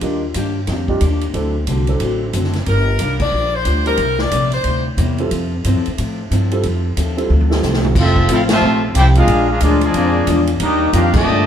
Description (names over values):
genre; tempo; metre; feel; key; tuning
jazz, big band swing; 181 BPM; 4/4; swing 62% on 8ths; F major; A4 = 439 Hz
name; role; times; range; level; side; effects
picked acoustic archtop guitar; accompaniment; 0.0-11.5 s; Bb2 to Bb4; -23 LUFS; left 3 dB; none
warm baby grand piano; accompaniment; 0.0-7.9 s; F#3 to Bb4; -23 LUFS; right 2 dB; none
upright bass; bass; 0.0-11.5 s; F1 to A2; -17 LUFS; equal; none
swinging big-band drum kit; drums; 0.0-11.2 s; crash cymbal, hi-hat, kick drum, ride cymbal, snare drum, toms; -23 LUFS; equal; none
edgy saxophone section; melody; 2.7-4.8 s; Bb4 to D5; -19 LUFS; left 3 dB; none
clear trumpet section; melody; 8.0-11.5 s; Bb3 to A5; -19 LUFS; equal; none
bright trombone section; second line; 8.0-11.5 s; Bb2 to G4; -17 LUFS; left 1 dB; none
clear trombone section; sustained chords; 8.6-11.1 s; Eb3 to A4; -29 LUFS; equal; none
room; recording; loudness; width
moderate echo chamber reverb, RT60 1.4 s; heard from further back in the room; -14 LUFS; side -9 dB against mid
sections
0.0-8.0 A section; 8.0-11.5 B section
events
band accent 3.2, 8.5, 11.1; drum fill 7.3-8.0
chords
0.0 Ebmaj7; 1.3 D7; 2.7 Gm7; 4.0 C7; 5.3 Fmaj7; 9.3 Bb7; 10.6 Ebmaj7